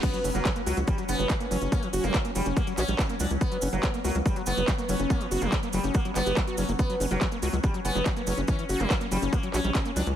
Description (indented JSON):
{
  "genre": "psychedelic trance",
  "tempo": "142 BPM",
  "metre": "4/4",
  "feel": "straight",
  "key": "F# major",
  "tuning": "A4 = 440 Hz",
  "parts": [
    { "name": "sitar", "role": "melody", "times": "0.0-10.1 s", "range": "F#3 to D4", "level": "-32 LUFS", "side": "right 1 dB", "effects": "phaser, sidechain pumping, dub echo" },
    { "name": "bubbling stepped-filter texture", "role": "sustained chords", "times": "0.0-10.2 s", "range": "F#3 to C#4", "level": "-34 LUFS", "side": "left 2 dB", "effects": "chorus, built-in reverb, sidechain pumping" },
    { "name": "electronic kick drum", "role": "drums", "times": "0.0-9.8 s", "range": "none", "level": "-27 LUFS", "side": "equal", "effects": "overdrive" },
    { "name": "techno drum kit", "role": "drums", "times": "0.0-10.2 s", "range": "crash cymbal, handclaps, hi-hat", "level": "-34 LUFS", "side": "equal", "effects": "overdrive" },
    { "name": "cabasa", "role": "percussion", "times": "0.0-10.2 s", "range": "none", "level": "-41 LUFS", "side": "right 4 dB", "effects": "none" },
    { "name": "reverse cymbal and impact", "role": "sound effects", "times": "0.0-1.7 s", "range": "none", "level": "-41 LUFS", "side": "equal", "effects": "none" },
    { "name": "overdriven acid bass", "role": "riff", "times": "0.1-10.0 s", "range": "E3 to G4", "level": "-32 LUFS", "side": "equal", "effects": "distortion, auto-pan, sidechain pumping, tape echo" },
    { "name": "tight sequencer bass", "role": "bass", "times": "0.2-10.1 s", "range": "F#1 to C#2", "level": "-29 LUFS", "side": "equal", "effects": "none" },
    { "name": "resonant blip pluck", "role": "second line", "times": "0.3-4.5, 7.1-8.0 s", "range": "F#3 to C#4", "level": "-43 LUFS", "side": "left 1 dB", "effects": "none" }
  ],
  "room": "little or no reverb",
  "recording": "none",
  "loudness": "-24 LUFS",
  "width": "side -10 dB against mid",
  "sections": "0.0-10.2 A section",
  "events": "drop 0.0-10.2; impact 0.0-1.7",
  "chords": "0.0 F#5",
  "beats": "| 0.03 0.45 0.88 1.30 | 1.72 2.14 2.57 2.99 | 3.41 3.83 4.26 4.68 | 5.10 5.52 5.95 6.37 | 6.79 7.21 7.64 8.06 | 8.48 8.90 9.33 9.75"
}